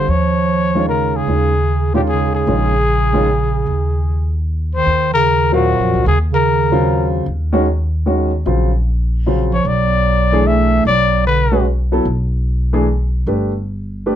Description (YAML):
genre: jazz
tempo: 150 BPM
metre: 3/4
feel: swing 66% on 8ths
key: unclear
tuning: A4 = 440 Hz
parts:
  - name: warm trumpet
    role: melody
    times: 0.0-7.1, 9.5-11.6 s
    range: Gb4 to E5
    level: -17 LUFS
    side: left 5 dB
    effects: none
  - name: mellow bass clarinet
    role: second line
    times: 0.0-7.1, 9.5-11.6 s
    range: Bb2 to A3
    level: -19 LUFS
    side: right 8 dB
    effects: none
  - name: warm grand piano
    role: accompaniment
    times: 0.0-3.3, 5.5-14.2 s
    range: Db3 to F5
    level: -18 LUFS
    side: equal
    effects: none
  - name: upright bass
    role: bass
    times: 0.0-14.2 s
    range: G1 to F2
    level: -17 LUFS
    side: equal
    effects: none
room: little or no reverb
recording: close, detailed microphones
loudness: -13 LUFS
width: side -10 dB against mid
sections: 0.0-4.9 A section; 4.9-14.2 B section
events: none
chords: 0.1 Eb9sus4; 4.9 Ebm9; 9.7 Bm11; 13.3 Gadd9